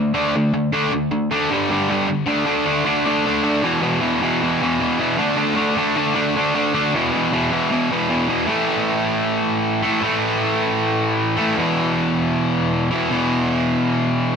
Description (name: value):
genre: punk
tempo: 155 BPM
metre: 4/4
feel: straight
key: unclear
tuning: A4 = 440 Hz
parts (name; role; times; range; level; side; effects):
- cranked stack guitar; solo; 0.0-14.4 s; E2 to D4; -17 LUFS; equal; overdrive, ping-pong delay
room: light reverb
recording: none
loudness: -17 LUFS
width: side -6 dB against mid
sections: 0.0-2.3 A section; 2.3-8.5 B section; 8.5-14.4 C section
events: none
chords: 0.0 D5; 1.5 G5; 2.3 D5; 3.6 E5; 5.2 D5; 6.9 E5; 8.5 A5; 11.6 E5